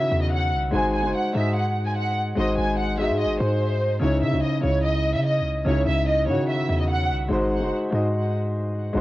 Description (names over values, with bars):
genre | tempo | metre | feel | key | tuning
hip hop, drill | 146 BPM | 4/4 | half-time | C# harmonic minor | A4 = 439 Hz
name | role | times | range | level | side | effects
dark studio violin section | melody | 0.0-7.1 s | B#4 to G#5 | -26 LUFS | equal | low-pass filter, cassette tape, tape echo
dark grand piano | accompaniment | 0.0-9.0 s | C#3 to D#5 | -24 LUFS | left 1 dB | low-pass filter, cassette tape
hard-hitting 808-style bass | bass | 0.1-9.0 s | F#1 to C#3 | -25 LUFS | equal | none
room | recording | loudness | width
light reverb, small room ambience | home recording on cassette | -20 LUFS | side -16 dB against mid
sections
0.0-9.0 A section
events
none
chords
0.0 C#madd9; 0.7 G#7; 4.0 C#madd9; 7.3 G#7